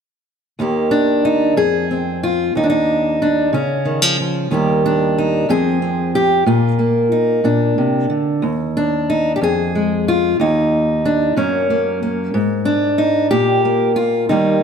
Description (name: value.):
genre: folk, solo fingerstyle acoustic guitar.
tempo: 61 BPM (dotted quarters).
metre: 6/8.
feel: straight.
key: Eb major.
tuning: A4 = 440 Hz.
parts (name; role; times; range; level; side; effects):
fingerpicked steel-string acoustic guitar; solo; 0.6-14.6 s; Eb2 to Ab4; -14 LUFS; equal; none.
room: moderate scoring stage reverb, RT60 1.6 s.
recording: none.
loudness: -14 LUFS.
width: side -7 dB against mid.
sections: 0.6-14.6 A section.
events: none.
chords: 0.6 Eb; 1.6 Fm; 2.6 N.C.; 3.5 Db; 4.5 Eb; 5.5 Fm; 6.5 Bb; 8.4 N.C.; 9.4 Fm; 10.4 N.C.; 11.4 Gb; 12.3 N.C..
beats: | 0.59 1.57 | 2.56 3.53 | 4.51 5.49 | 6.46 7.44 | 8.43 9.41 | 10.39 11.36 | 12.34 13.31 | 14.29.